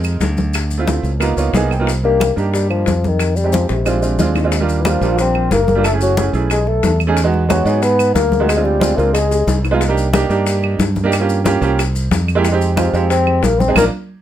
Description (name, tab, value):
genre	Afro-Cuban jazz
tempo	182 BPM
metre	4/4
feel	straight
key	C minor, Eb major from 4.5 s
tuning	A4 = 440 Hz
part	clear upright piano	accompaniment	0.0-13.9 s	G3 to G5	-18 LUFS	right 5 dB	none
part	modern bright fingered electric bass	bass	0.0-13.9 s	Gb1 to G#2	-17 LUFS	equal	none
part	bongos	percussion	0.0-13.8 s	none	-26 LUFS	left 8 dB	none
part	claves	percussion	0.0-13.8 s	none	-24 LUFS	right 6 dB	none
part	maracas	percussion	0.0-13.8 s	none	-30 LUFS	left 5 dB	none
part	congas	percussion	0.1-13.8 s	none	-20 LUFS	left 2 dB	none
part	dark bassoon	melody	2.0-9.6, 12.8-13.9 s	C3 to C4	-18 LUFS	left 5 dB	none
part	clear trombone	second line	4.8-9.6, 12.8-13.8 s	Fb4 to C5	-22 LUFS	right 6 dB	none
room	little or no reverb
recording	close, detailed microphones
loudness	-13 LUFS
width	side -11 dB against mid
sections	0.0-4.5 A section; 4.5-14.2 B section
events	upright piano fill 1.2-1.9; drum fill 3.5-4.5, 9.2-9.8; band accent 13.8-14.2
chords	0.0 Fm7; 0.5 Dm7; 1.2 Db13; 1.9 Cm9; 3.2 Fm7; 3.9 Bb9; 4.5 Ebmaj9; 5.8 Gbm7; 6.5 B13; 7.2 Emaj9; 8.5 Dm7b5; 9.2 Db7sus2; 9.8 Cm9; 11.1 Gm7b5; 11.8 C7b13; 12.4 Fm7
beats	0.21 | 0.55 0.88 1.21 1.54 | 1.87 2.21 2.54 2.87 | 3.20 3.53 3.86 4.20 | 4.53 4.86 5.19 5.52 | 5.85 6.18 6.51 6.84 | 7.17 7.50 7.83 8.16 | 8.49 8.82 9.15 9.48 | 9.81 10.14 10.47 10.80 | 11.13 11.46 11.79 12.12 | 12.45 12.78 13.11 13.44 | 13.77